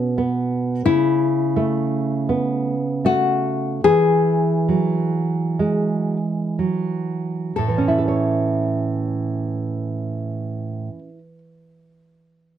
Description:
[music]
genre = romantic duo for nylon-string guitar and classical guitar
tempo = 28-45 BPM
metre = 4/4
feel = rubato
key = A major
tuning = A4 = 440 Hz
[part]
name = nylon-string guitar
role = melody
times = 0.0-10.9 s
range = E4 to A4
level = -20 LUFS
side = left 6 dB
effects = none
[part]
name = nylon-string guitar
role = accompaniment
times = 0.0-11.4 s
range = A2 to C#5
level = -20 LUFS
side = right 3 dB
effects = none
[sound]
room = light reverb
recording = dark, warm production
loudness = -18 LUFS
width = side -10 dB against mid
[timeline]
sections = 0.0-7.6 A section; 7.6-12.6 B section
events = slowing down 0.0-7.6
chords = 0.0 G#madd11/B; 0.9 A/C#; 3.8 Eadd9; 7.6 A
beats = | 0.86 2.28 3.83 5.58 | 7.56 9.39 11.25

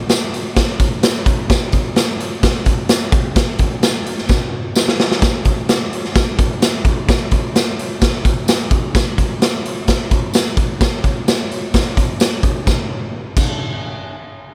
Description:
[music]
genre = soul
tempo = 129 BPM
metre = 4/4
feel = straight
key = none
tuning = none
[part]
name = raw garage drum kit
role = drums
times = 0.1-13.5 s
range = crash cymbal, hi-hat, kick drum, snare drum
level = -17 LUFS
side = equal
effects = none
[part]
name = tambourine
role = percussion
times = 0.1-13.5 s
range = none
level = -29 LUFS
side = equal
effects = none
[sound]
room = light reverb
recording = none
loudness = -17 LUFS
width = mono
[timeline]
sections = 0.0-5.2 A section; 5.2-12.7 B section; 12.7-14.5 C section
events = drum fill 4.3-5.2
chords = none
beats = 0.10 0.57 1.03 | 1.50 1.97 2.43 2.90 | 3.36 3.83 4.29 4.76 | 5.23 5.69 6.16 6.62 | 7.09 7.55 8.02 8.48 | 8.95 9.41 9.88 10.34 | 10.81 11.27 11.74 12.20 | 12.67 13.13

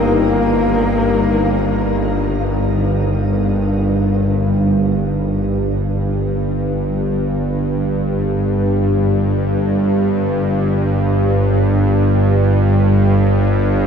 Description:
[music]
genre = dark ambient drone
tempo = free time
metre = none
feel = none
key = G minor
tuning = A4 = 445 Hz
[part]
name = dark horsehead fiddle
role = melody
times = 0.0-2.3 s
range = Bb3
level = -22 LUFS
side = left 2 dB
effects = shimmer reverb, diffuse ambient delay
[part]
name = deep dark ambient pad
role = sustained chords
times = 0.0-4.6 s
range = Eb4 to F5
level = -24 LUFS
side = left 2 dB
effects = chorus, built-in reverb, shimmer reverb
[part]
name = bowed-like drone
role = drone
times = 0.0-13.9 s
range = G1 to G2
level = -14 LUFS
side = equal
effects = built-in reverb
[sound]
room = wet huge ambient reverb, RT60 8.2 s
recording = dark, warm production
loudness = -14 LUFS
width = side -7 dB against mid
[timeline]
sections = 0.0-4.6 A section; 4.6-13.9 B section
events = none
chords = 0.0 Eb; 4.6 G5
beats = free time

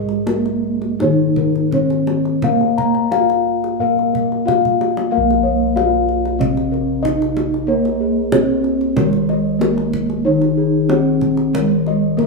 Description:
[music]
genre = Javanese gamelan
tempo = 92 BPM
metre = 4/4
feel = uneven beats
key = Bb slendro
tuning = A4 = 440 Hz
[part]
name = gamelan-type bronze metallophone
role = melody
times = 0.0-12.3 s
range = Ab3-25c to Bb4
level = -19 LUFS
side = right 2 dB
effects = none
[part]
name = gamelan-type bronze metallophone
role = accompaniment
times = 0.0-12.3 s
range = Db3-45c to Bb3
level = -20 LUFS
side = left 2 dB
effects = none
[part]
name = gamelan-type bossed gongs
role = arpeggios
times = 0.0-12.3 s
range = Ab4-25c to Bb5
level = -20 LUFS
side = left 5 dB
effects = none
[part]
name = gamelan-type bossed gongs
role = bass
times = 0.0-12.3 s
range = Bb1 to Bb4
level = -25 LUFS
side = left 4 dB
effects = none
[part]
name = kendang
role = percussion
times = 0.1-12.3 s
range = none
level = -24 LUFS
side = equal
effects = none
[sound]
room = wet large studio reverb, RT60 1.2 s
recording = band playing live in one room, small room ambience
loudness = -14 LUFS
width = side -2 dB against mid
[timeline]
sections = 0.0-5.1 A section; 5.1-12.3 B section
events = drum fill 4.6-5.1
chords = none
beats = 0.28 1.01 1.73 | 2.44 3.13 3.80 4.46 | 5.12 5.76 6.40 7.05 | 7.69 8.33 8.98 9.62 | 10.26 10.91 11.55 12.20

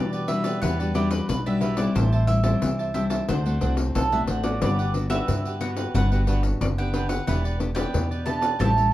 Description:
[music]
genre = samba and choro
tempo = 90 BPM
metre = 4/4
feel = straight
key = unclear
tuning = A4 = 441 Hz
[part]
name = mandolin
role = melody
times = 0.0-8.9 s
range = A4 to A5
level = -29 LUFS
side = right 3 dB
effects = none
[part]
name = cavaquinho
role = accompaniment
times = 0.0-8.9 s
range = D4 to A5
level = -32 LUFS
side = right 3 dB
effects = none
[part]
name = nylon-string guitar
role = accompaniment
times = 0.0-8.9 s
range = A2 to G4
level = -28 LUFS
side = left 2 dB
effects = none
[part]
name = upright bass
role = bass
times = 0.0-8.9 s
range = E1 to E3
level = -25 LUFS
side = equal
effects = none
[part]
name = pandeiro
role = percussion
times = 0.1-8.9 s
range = none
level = -29 LUFS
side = left 3 dB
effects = none
[sound]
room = moderate studio reverb, RT60 0.5 s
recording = dark, warm production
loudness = -21 LUFS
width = side -14 dB against mid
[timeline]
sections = 0.0-8.9 A section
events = none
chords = 0.0 Em9; 2.0 Am7; 3.3 D7; 4.6 Gmaj7; 7.3 Em7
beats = 0.62 1.29 | 1.96 2.62 3.29 3.95 | 4.62 5.28 5.95 6.61 | 7.27 7.93 8.60

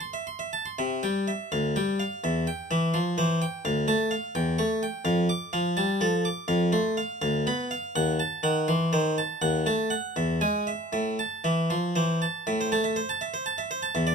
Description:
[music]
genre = classical, baroque-style suite movement for harpsichord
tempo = 76-85 BPM (dotted quarters)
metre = 6/8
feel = rubato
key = C major, A minor from 6.5 s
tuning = A4 = 441 Hz
[part]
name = harpsichord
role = solo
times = 0.0-14.1 s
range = D2 to D6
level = -24 LUFS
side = equal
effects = none
[sound]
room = little or no reverb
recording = close, detailed microphones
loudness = -24 LUFS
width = side -5 dB against mid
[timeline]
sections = 0.8-12.5 A section; 12.5-14.1 B section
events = none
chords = 0.0 Am; 0.8 C; 1.5 G5/D; 2.2 C/E; 3.6 Dm; 4.3 A7/E; 5.1 Dm/F; 6.5 F; 7.2 Bdim/D; 7.9 D#dim7; 9.4 D#dim; 10.2 E; 10.9 Am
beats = 0.00 | 0.78 1.51 | 2.23 2.93 | 3.64 4.35 | 5.05 5.77 | 6.49 7.21 | 7.95 8.68 | 9.41 10.15 | 10.93 11.70 | 12.47 13.21 | 13.94

